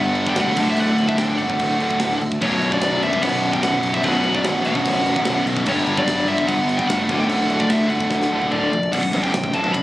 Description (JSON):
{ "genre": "heavy metal", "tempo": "147 BPM", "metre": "4/4", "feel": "straight", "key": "B minor", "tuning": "A4 = 441 Hz", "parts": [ { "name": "high-gain lead guitar", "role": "melody", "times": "0.0-9.8 s", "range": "C#5 to B5", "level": "-22 LUFS", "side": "equal", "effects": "distortion, digital delay" }, { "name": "high-gain lead guitar", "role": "second line", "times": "0.0-8.7 s", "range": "F#3 to D4", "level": "-27 LUFS", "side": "right 2 dB", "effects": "none" }, { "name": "chamber organ, sparkling flutes", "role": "sustained chords", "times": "0.0-9.8 s", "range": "none", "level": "barely audible", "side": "none", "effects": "none" }, { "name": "high-gain distorted guitar", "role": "riff", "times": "0.0-9.8 s", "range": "B1 to G3", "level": "-23 LUFS", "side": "left 4 dB", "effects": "distortion" }, { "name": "tight distorted guitar", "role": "riff", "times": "0.0-9.8 s", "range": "B1 to G3", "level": "-25 LUFS", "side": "right 4 dB", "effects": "distortion" }, { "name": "fuzz fingered electric bass", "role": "bass", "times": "0.0-9.8 s", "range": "B0 to D2", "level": "-25 LUFS", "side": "equal", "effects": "overdrive" }, { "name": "tight metal drum kit", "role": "drums", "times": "0.1-9.8 s", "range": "crash cymbal, kick drum, ride cymbal, snare drum, toms", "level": "-28 LUFS", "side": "equal", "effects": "none" } ], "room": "small room ambience", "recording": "recorded on a phone in the room, club reverb, compression", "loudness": "-17 LUFS", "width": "side -16 dB against mid", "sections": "0.0-8.9 A section", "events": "drum fill 8.1-8.9", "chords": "0.0 G; 0.6 D; 2.4 Bm; 5.7 G; 7.1 D; 8.9 Bm", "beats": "0.37 | 0.78 1.19 1.60 2.00 | 2.41 2.82 3.23 3.63 | 4.04 4.45 4.86 5.26 | 5.67 6.08 6.48 6.89 | 7.30 7.71 8.11 8.52 | 8.93 9.33 9.74" }